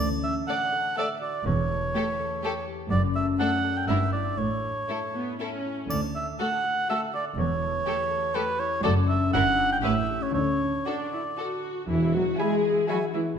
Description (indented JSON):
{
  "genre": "cinematic, playful, whimsical film cue",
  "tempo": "121 BPM",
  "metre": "3/4",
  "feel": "straight",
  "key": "D major",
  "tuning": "A4 = 441 Hz",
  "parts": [
    { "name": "warm cor anglais", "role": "second line", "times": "0.0-13.1 s", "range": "B4 to G#5", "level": "-28 LUFS", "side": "right 2 dB", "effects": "none" },
    { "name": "concert harp", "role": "arpeggios", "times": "0.0-13.4 s", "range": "E2 to D5", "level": "-30 LUFS", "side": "left 6 dB", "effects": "none" },
    { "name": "dark chamber double bass section", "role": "bass", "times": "0.0-12.3 s", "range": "E1 to E2", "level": "-31 LUFS", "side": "right 4 dB", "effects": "none" },
    { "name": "warm chamber cello section", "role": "bass", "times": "0.0-13.2 s", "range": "D2 to G#3", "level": "-30 LUFS", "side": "right 3 dB", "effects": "none" },
    { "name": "rich chamber violin section", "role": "melody", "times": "0.5-13.3 s", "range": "A4 to G#5", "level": "-36 LUFS", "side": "left 5 dB", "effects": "none" },
    { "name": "warm studio violin section", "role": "second line", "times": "0.5-13.3 s", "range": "D4 to G#5", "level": "-38 LUFS", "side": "left 3 dB", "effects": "none" },
    { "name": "rich symphonic viola section", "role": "accompaniment", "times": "0.5-13.2 s", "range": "A3 to G#4", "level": "-34 LUFS", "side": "right 2 dB", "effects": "none" },
    { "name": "triangle", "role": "percussion", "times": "5.9-6.9 s", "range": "none", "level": "-40 LUFS", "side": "left 3 dB", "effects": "none" },
    { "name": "warm French horn section", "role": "sustained chords", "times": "11.9-13.4 s", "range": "E4 to G#4", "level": "-27 LUFS", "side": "left 5 dB", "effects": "none" },
    { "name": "mellow tuba", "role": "bass", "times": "11.9-12.3 s", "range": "E1", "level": "-33 LUFS", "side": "right 4 dB", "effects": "none" },
    { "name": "mellow hollow small flute group", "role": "second line", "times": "12.4-13.0 s", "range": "B5", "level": "-40 LUFS", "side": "equal", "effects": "none" },
    { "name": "warm clarinet", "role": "second line", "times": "12.4-13.1 s", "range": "E5", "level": "-39 LUFS", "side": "left 2 dB", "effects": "none" },
    { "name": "mellow bassoon", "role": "accompaniment", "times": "12.4-13.1 s", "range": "G#3", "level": "-38 LUFS", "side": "left 2 dB", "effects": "none" }
  ],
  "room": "wet scoring stage reverb, RT60 1.7 s",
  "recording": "none",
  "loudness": "-24 LUFS",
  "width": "side -7 dB against mid",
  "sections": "0.0-11.9 A section; 11.9-13.4 B section",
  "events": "none",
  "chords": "0.0 D; 1.5 A7/E; 2.9 D/F#; 3.9 Em7/G; 4.4 A; 5.9 D; 7.4 A7/E; 8.8 D/F#; 9.3 Em7/G; 9.8 A7; 10.3 D; 11.9 E"
}